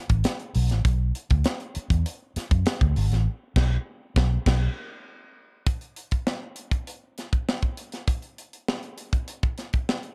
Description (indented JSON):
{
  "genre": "funk",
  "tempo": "100 BPM",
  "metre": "4/4",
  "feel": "straight",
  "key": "B dorian",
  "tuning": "A4 = 438 Hz",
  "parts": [
    { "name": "vintage muted fingered electric bass", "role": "bass", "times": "0.1-4.7 s", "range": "G#1 to F#2", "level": "-25 LUFS", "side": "equal", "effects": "none" },
    { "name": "tight funk drum kit", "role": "drums", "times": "0.1-10.1 s", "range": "crash cymbal, hi-hat, kick drum, snare drum", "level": "-28 LUFS", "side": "equal", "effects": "none" }
  ],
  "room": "little or no reverb",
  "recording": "dark, warm production",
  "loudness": "-26 LUFS",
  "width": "mono",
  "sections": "0.0-5.7 A section; 5.7-10.1 B section",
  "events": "band accent 3.3-5.7",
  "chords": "none"
}